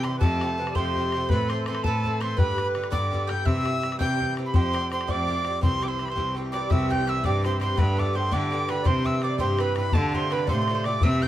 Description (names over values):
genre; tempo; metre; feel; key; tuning
celtic folk, Celtic jig; 111 BPM (dotted quarters); 6/8; straight; C major; A4 = 438 Hz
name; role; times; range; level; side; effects
bright wooden whistle; melody; 0.0-11.3 s; A5 to G6; -29 LUFS; equal; none
accordion; second line; 0.0-11.3 s; A4 to G5; -35 LUFS; right 1 dB; light tremolo tuning
mandolin; second line; 0.0-11.3 s; G4 to G5; -34 LUFS; right 5 dB; none
Irish bouzouki; accompaniment; 0.0-11.3 s; G2 to B4; -31 LUFS; equal; none
clear cello; bass; 0.0-11.3 s; C2 to D3; -27 LUFS; equal; none
bodhran; percussion; 0.0-11.3 s; none; -26 LUFS; left 1 dB; none
room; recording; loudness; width
moderate studio reverb, RT60 0.6 s; none; -22 LUFS; side -13 dB against mid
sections
0.0-6.7 A section; 6.7-11.3 B section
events
none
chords
0.2 Fadd9; 1.3 Amadd9; 2.4 G; 3.5 C; 4.5 Fadd9; 5.6 C; 7.8 Gadd9; 8.9 C; 9.9 Dm7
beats
| 0.21 0.76 | 1.30 1.84 | 2.38 2.92 | 3.46 4.00 | 4.54 5.08 | 5.62 6.16 | 6.70 7.24 | 7.78 8.32 | 8.86 9.40 | 9.94 10.48 | 11.02